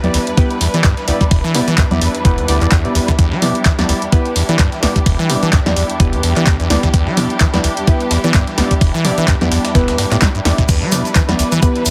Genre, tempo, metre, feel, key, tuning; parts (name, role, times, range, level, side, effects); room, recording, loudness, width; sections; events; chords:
acid house; 128 BPM; 4/4; swing 56% on 16ths; E minor pentatonic; A4 = 438 Hz
rich symphonic string section; sustained chords; 0.0-11.9 s; G3 to B4; -25 LUFS; equal; sidechain pumping
acid bass, saw; riff; 0.0-11.9 s; E1 to G3; -20 LUFS; equal; tape echo
deep mellow chord stab; stabs; 0.0-11.8 s; B3 to D5; -23 LUFS; equal; lush chorus, tape echo
punchy analog drum machine; drums; 0.0-11.9 s; congas, crash cymbal, handclaps, hi-hat, snare drum; -22 LUFS; equal
dusty soul sampler-style drum kit; drums; 0.1-11.9 s; hi-hat, snare drum; -31 LUFS; equal
electronic kick drum; drums; 0.4-11.7 s; -16 LUFS; equal
maracas; percussion; 10.7-11.9 s; -26 LUFS; equal
light reverb, digital ambience; heavily compressed radio sound; -14 LUFS; mono
0.0-11.9 A section
0.0 Em7